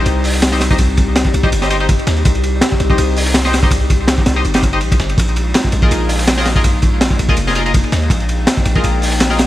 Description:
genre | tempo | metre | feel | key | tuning
drum and bass, jungle | 164 BPM | 4/4 | swing 53% on 16ths | C minor | A4 = 440 Hz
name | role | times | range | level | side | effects
warbly tape-like pad | sustained chords | 0.0-9.5 s | G3 to G5 | -23 LUFS | left 4 dB | chorus, built-in reverb
band-passed chord stab | stabs | 0.0-9.4 s | Eb4 to Eb5 | -21 LUFS | left 2 dB | chorus, vintage 12-bit sampler grit, dub echo
long sustained 808-style bass | bass | 0.0-9.5 s | F1 to Eb2 | -17 LUFS | equal | none
crunchy breakbeat drum kit | drums | 0.1-9.5 s | hi-hat, kick drum, ride cymbal, snare drum | -14 LUFS | equal | none
dusty soul sampler-style drum kit | drums | 0.1-9.5 s | hi-hat, snare drum | -26 LUFS | equal | high-pass filter on hats, high-pass filter on snare
room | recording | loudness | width
little or no reverb | vinyl crackle | -12 LUFS | side -14 dB against mid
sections
0.0-9.5 A section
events
none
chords
0.0 Cm; 5.2 Bb7sus4

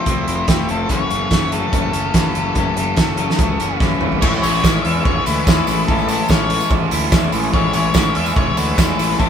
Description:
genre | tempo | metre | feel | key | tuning
indie rock | 145 BPM | 4/4 | straight | A major | A4 = 445 Hz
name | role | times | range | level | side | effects
octave-fuzz lead guitar | melody | 0.0-9.3 s | G4 to E5 | -23 LUFS | left 5 dB | distortion
biting overdriven guitar | riff | 0.0-9.3 s | F#2 to E4 | -24 LUFS | right 7 dB | none
twangy electric guitar | riff | 0.0-9.3 s | F#2 to E4 | -22 LUFS | left 6 dB | spring reverb
fuzz picked electric bass | bass | 0.1-9.3 s | E1 to E2 | -23 LUFS | equal | overdrive
loose indie drum kit | drums | 0.1-9.3 s | crash cymbal, hi-hat, kick drum, snare drum, toms | -18 LUFS | right 1 dB | none
glockenspiel with rubber mallets | second line | 4.2-9.3 s | A5 to E6 | -29 LUFS | right 2 dB | none
combo organ | sustained chords | 4.2-9.3 s | E4 to A5 | -32 LUFS | right 1 dB | none
tambourine | percussion | 4.3-9.3 s | none | -32 LUFS | right 6 dB | none
room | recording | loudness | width
light reverb | band playing live in one room | -14 LUFS | side -8 dB against mid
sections
0.0-4.2 A section; 4.2-9.3 B section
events
drum fill 3.8-4.2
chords
0.0 Fmaj7; 0.9 F#m7; 4.2 Amaj7

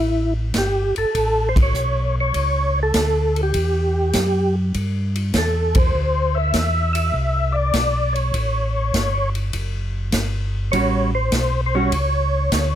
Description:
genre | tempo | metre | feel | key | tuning
soul jazz organ trio | 100 BPM | 4/4 | swing 69% on 8ths | A mixolydian | A4 = 440 Hz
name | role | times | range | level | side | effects
percussive tonewheel organ | melody | 0.0-12.8 s | E4 to E5 | -21 LUFS | equal | slow rotary speaker, chorus vibrato
mellow tonewheel organ | bass | 0.0-12.8 s | F#1 to G2 | -21 LUFS | equal | slow rotary speaker
swinging big-band drum kit | drums | 0.5-12.7 s | hi-hat, kick drum, ride cymbal, snare drum | -24 LUFS | equal | none
vintage hollow-body jazz guitar | accompaniment | 10.7-11.9 s | G3 to F#4 | -22 LUFS | right 3 dB | none
room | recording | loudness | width
little or no reverb | close, detailed microphones | -18 LUFS | side -11 dB against mid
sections
0.0-12.8 A section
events
band accent 1.4-1.7, 5.6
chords
0.0 A13; 5.9 Dsus2; 8.3 A13

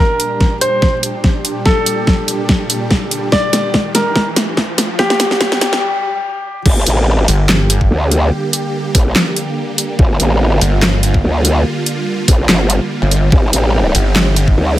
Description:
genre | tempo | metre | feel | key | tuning
heavy wobble dubstep | 144 BPM | 4/4 | swing 54% on 16ths, half-time | G minor | A4 = 444 Hz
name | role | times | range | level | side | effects
clear concert grand piano | melody | 0.0-6.6 s | G4 to D5 | -18 LUFS | left 1 dB | dub echo
supersaw chords | sustained chords | 0.0-14.8 s | Bb2 to G4 | -21 LUFS | right 2 dB | sidechain pumping
riser | sound effects | 2.3-5.8 s | none | -25 LUFS | left 1 dB | none
dubstep drum kit | drums | 0.2-14.5 s | crash cymbal, handclaps, hi-hat, snare drum | -15 LUFS | equal | none
electronic kick drum | drums | 0.4-14.6 s | none | -13 LUFS | equal | none
growl bass | bass | 6.7-14.8 s | G1 to D2 | -13 LUFS | equal | chorus, overdrive
pulsing pluck wobble bass | bass | 7.3-7.9, 10.6-14.6 s | G1 | -13 LUFS | equal | chorus, overdrive
room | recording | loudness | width
light reverb | high-pass filter | -12 LUFS | side -14 dB against mid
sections
0.0-6.7 A section; 6.7-14.8 B section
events
build-up 0.0-6.7; drum fill 0.0-5.8; riser 2.3-5.8; break 5.8-6.7; drop 6.7-14.8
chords
0.0 Gm; 13.3 Cm/G

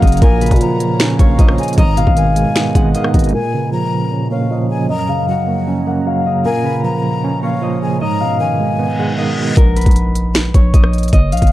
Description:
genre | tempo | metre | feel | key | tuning
hip hop, trap | 154 BPM | 4/4 | half-time | Bb phrygian | A4 = 440 Hz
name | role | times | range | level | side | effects
Celtic harp | melody | 0.0-11.5 s | Bb4 to Gb5 | -21 LUFS | left 3 dB | low-pass filter
overdriven tine electric piano | accompaniment | 0.0-9.6 s | Gb2 to Db4 | -17 LUFS | right 3 dB | medium tremolo, low-pass filter
ethereal airy pad | sustained chords | 0.0-9.6 s | Gb2 to Bb5 | -26 LUFS | right 1 dB | ensemble chorus, built-in reverb, tremolo, low-pass filter
growling 808-style bass | bass | 0.0-3.3, 9.6-11.5 s | Gb1 to Bb2 | -16 LUFS | equal | none
trap drum kit | drums | 0.0-3.3, 9.6-11.5 s | finger snaps, hi-hat, kick drum, rim click, snare drum | -12 LUFS | equal | none
breathy jazz flute | second line | 0.2-9.6 s | Eb5 to Bb5 | -24 LUFS | left 4 dB | tape echo
reverse cymbal and impact | sound effects | 8.9-11.1 s | none | -26 LUFS | left 1 dB | none
room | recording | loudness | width
little or no reverb | dark, warm production | -12 LUFS | side -15 dB against mid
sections
0.0-3.3 A section; 3.3-9.6 B section; 9.6-11.5 C section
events
filter sweep 3.3-9.6; reverse cymbal 8.9-9.6; impact 9.6-11.1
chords
0.2 Bbm; 1.8 Abm; 3.3 Bbm; 4.9 Gb; 6.5 Bbm; 8.0 Abm; 9.6 Bbmadd11

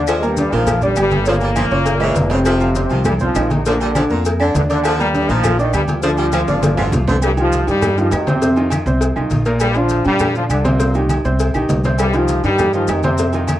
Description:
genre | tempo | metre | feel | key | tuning
latin, salsa | 201 BPM | 4/4 | straight | C minor | A4 = 438 Hz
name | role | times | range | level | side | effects
brilliant trombone section | melody | 0.0-13.5 s | G2 to F4 | -19 LUFS | left 1 dB | none
clear concert grand piano | accompaniment | 0.0-13.6 s | Bb2 to D6 | -20 LUFS | right 1 dB | none
upright bass | bass | 0.0-13.6 s | F1 to Bb2 | -20 LUFS | equal | none
clear saxophone section | second line | 0.1-7.2 s | Bb2 to G3 | -24 LUFS | equal | none
agogo bells and timbales | percussion | 0.1-13.6 s | none | -26 LUFS | right 5 dB | none
claves | percussion | 0.1-13.6 s | none | -31 LUFS | left 4 dB | none
congas | percussion | 0.1-13.6 s | none | -23 LUFS | equal | none
cowbell | percussion | 0.1-13.6 s | none | -25 LUFS | left 3 dB | none
maracas | percussion | 0.1-13.6 s | none | -34 LUFS | left 6 dB | none
room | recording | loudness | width
moderate studio reverb, RT60 0.5 s | worn, warbling old tape, cassette tape, warbly pitch drift | -14 LUFS | side -13 dB against mid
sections
0.0-7.2 A section; 7.2-13.6 B section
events
drum fill 1.9-2.5, 6.3-7.2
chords
0.1 Ebmaj7; 1.3 Gm7b5; 1.9 F#7; 2.5 F5; 3.7 Bb; 6.0 G7sus4; 7.2 Cm; 8.4 F5; 9.6 Bb; 10.8 Cm7

